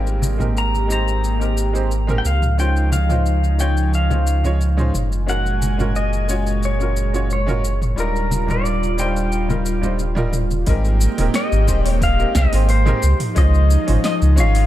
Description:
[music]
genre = sunset chillout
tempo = 89 BPM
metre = 4/4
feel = straight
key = Ab major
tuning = A4 = 440 Hz
[part]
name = bright grand piano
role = accompaniment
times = 0.0-14.7 s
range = G3 to Db5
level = -26 LUFS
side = moving between left 4 dB and right 4 dB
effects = auto-pan, analog delay
[part]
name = airy breathy pad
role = sustained chords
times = 0.0-14.7 s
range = Bb2 to Ab5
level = -26 LUFS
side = right 1 dB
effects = chorus
[part]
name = warm sub bass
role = bass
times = 0.0-14.7 s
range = Eb1 to Db2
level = -18 LUFS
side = equal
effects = none
[part]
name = deep house drum kit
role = drums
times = 0.1-14.7 s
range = hi-hat, shaker, snare drum, toms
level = -27 LUFS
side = right 1 dB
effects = overdrive, analog delay
[part]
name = congas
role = percussion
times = 0.2-10.6 s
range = none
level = -28 LUFS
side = left 2 dB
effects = analog delay
[part]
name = pedal steel guitar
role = melody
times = 0.6-14.7 s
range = Bb4 to Bb5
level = -24 LUFS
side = left 2 dB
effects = analog delay
[part]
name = electronic kick drum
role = drums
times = 10.7-13.5 s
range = none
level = -21 LUFS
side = equal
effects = overdrive
[sound]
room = digital ambience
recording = echo-heavy mix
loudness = -16 LUFS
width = side -13 dB against mid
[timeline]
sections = 0.0-10.7 A section; 10.7-14.7 B section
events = filter sweep on analog synth pad 0.0-10.7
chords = 0.0 Abmaj9; 2.2 Dbmaj9; 4.9 Gbmaj9; 8.0 Ebmaj9; 10.7 Abmaj9; 13.0 Dbmaj9

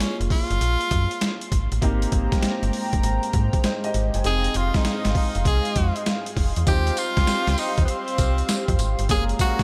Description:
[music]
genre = R&B, new jack swing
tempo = 99 BPM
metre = 4/4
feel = swing 66% on 16ths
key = unclear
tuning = A4 = 441 Hz
[part]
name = edgy tenor saxophone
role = melody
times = 0.0-9.6 s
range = Cb4 to Ab4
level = -30 LUFS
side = equal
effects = none
[part]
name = warm concert grand piano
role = accompaniment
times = 0.0-9.6 s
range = Ab3 to Ab5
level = -34 LUFS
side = equal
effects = lush chorus
[part]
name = boom bap sampler-style drum kit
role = drums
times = 0.0-9.6 s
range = hi-hat, kick drum, snare drum, tambourine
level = -26 LUFS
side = equal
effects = overdrive
[part]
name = slap-like FM bass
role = bass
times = 0.2-9.6 s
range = F1 to Ab2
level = -26 LUFS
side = equal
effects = none
[part]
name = chorused pulse-width pad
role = sustained chords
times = 1.8-9.6 s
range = Ab3 to C6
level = -32 LUFS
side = equal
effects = none
[sound]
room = light reverb, digital ambience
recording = none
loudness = -22 LUFS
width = mono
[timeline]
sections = 0.0-6.7 A section; 6.7-9.6 B section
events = none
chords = 0.0 Gbmaj9; 1.8 Abmaj9; 4.2 Fm7; 6.7 Eb69; 9.1 Gbmaj9

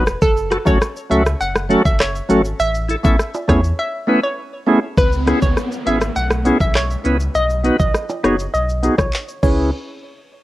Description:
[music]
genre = dancehall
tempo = 101 BPM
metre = 4/4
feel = straight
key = C# minor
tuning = A4 = 440 Hz
[part]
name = hollow square pluck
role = melody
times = 0.0-9.7 s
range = A4 to F#5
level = -22 LUFS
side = equal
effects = chorus, low-pass filter, tape echo, plate reverb
[part]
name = bright tonewheel organ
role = accompaniment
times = 0.0-9.7 s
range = F#3 to B4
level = -17 LUFS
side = equal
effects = slow rotary speaker, low-pass filter, plate reverb
[part]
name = sub bass with octave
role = bass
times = 0.0-9.7 s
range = E1 to E2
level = -22 LUFS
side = equal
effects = none
[part]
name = island pop drum kit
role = drums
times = 0.1-9.6 s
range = crash cymbal, handclaps, hi-hat, kick drum, rim click, shaker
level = -18 LUFS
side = equal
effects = none
[part]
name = tube shaker and timbales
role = percussion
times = 0.1-9.7 s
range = none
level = -33 LUFS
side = right 3 dB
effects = none
[part]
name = downlifter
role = sound effects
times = 5.0-9.7 s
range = none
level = -28 LUFS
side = equal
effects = none
[sound]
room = light reverb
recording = worn, warbling old tape, cassette tape, warbly pitch drift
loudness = -15 LUFS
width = side -16 dB against mid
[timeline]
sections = 0.0-5.0 A section; 5.0-9.7 B section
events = drums muted 3.8-5.0; filter sweep 5.0-9.7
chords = 0.2 F#m; 2.6 Aadd9; 5.0 C#m7; 7.4 B; 9.4 C#m7; 9.7 N.C.

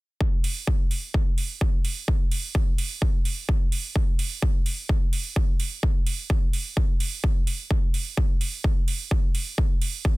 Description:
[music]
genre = EDM, festival progressive house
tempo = 128 BPM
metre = 4/4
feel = straight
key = none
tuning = none
[part]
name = electronic kick drum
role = drums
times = 0.2-10.1 s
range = none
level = -22 LUFS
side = equal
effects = none
[part]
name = electronic hi-hat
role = drums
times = 0.4-9.9 s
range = none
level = -32 LUFS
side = right 6 dB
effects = none
[sound]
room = digital ambience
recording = dense, heavily limited modern master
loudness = -22 LUFS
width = side -21 dB against mid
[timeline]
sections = 0.2-10.2 A section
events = none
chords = none

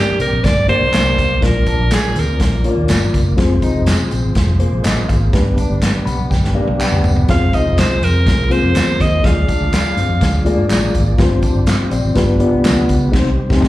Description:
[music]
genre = uptempo 1960s-style soul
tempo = 123 BPM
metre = 4/4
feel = straight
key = unclear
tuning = A4 = 439 Hz
[part]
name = edgy alto saxophone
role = melody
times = 0.0-2.7, 7.3-10.7 s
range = G4 to F5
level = -18 LUFS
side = right 1 dB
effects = slapback echo
[part]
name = mellow reed electric piano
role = accompaniment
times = 0.0-13.7 s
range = G3 to B5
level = -19 LUFS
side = left 2 dB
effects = fast tremolo, slapback echo
[part]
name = tonewheel organ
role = sustained chords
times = 0.0-13.7 s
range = D3 to D4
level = -26 LUFS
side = right 2 dB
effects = slow rotary speaker
[part]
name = electric guitar through a small old amp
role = riff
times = 0.2-13.1 s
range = Bb3 to Eb4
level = -25 LUFS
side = left 2 dB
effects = wide subtle chorus, slapback echo
[part]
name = vintage muted fingered electric bass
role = bass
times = 0.2-13.7 s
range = F1 to G2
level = -16 LUFS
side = equal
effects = none
[part]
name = natural country drum kit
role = drums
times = 0.2-13.7 s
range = crash cymbal, hi-hat, kick drum, snare drum, toms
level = -18 LUFS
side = equal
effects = none
[part]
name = tambourine and handclaps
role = percussion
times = 0.2-13.0 s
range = none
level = -26 LUFS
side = right 2 dB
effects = slapback echo
[sound]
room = light reverb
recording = live gig heard through the venue's PA, club reverb, vinyl crackle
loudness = -12 LUFS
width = side -16 dB against mid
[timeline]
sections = 0.0-13.7 A section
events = reed electric piano fill 5.8-7.3; drum fill 6.3-7.3; band accent 13.1-13.7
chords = 0.0 Gm; 1.4 Bb; 3.4 Fm; 5.3 G; 7.3 Fm; 9.2 Ddim; 11.2 G7sus4; 12.2 G7; 13.1 Cm

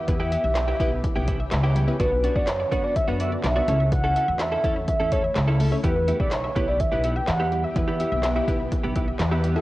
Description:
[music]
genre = dance-pop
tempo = 125 BPM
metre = 4/4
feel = straight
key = unclear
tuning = A4 = 437 Hz
[part]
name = mellow horn-like synth lead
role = melody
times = 0.0-9.2 s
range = B4 to G5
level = -26 LUFS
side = equal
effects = chorus
[part]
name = shimmering ambient pad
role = sustained chords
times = 0.0-9.6 s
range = C#3 to G4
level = -34 LUFS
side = left 1 dB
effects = chorus, built-in reverb, sidechain pumping, cassette tape
[part]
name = wide unison pluck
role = arpeggios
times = 0.0-9.6 s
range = D3 to E5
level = -36 LUFS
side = equal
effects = none
[part]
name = wavetable chord stab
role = accompaniment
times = 0.1-9.6 s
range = B3 to C#5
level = -33 LUFS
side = left 1 dB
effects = sidechain pumping, cassette tape
[part]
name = direct-recorded clean electric guitar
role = riff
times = 0.1-9.6 s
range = B3 to A4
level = -32 LUFS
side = right 2 dB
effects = analog chorus, cassette tape
[part]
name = upright bass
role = bass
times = 0.1-9.6 s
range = B1 to F#2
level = -25 LUFS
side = equal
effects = sidechain pumping
[part]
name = deep house drum kit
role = drums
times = 0.1-9.6 s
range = handclaps, hi-hat, kick drum, snare drum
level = -27 LUFS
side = equal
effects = cassette tape
[sound]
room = light reverb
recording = home recording on cassette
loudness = -20 LUFS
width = side -17 dB against mid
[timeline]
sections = 0.0-9.6 A section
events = none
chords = 0.0 Em; 2.0 Bm; 3.7 A/C#; 5.8 Em

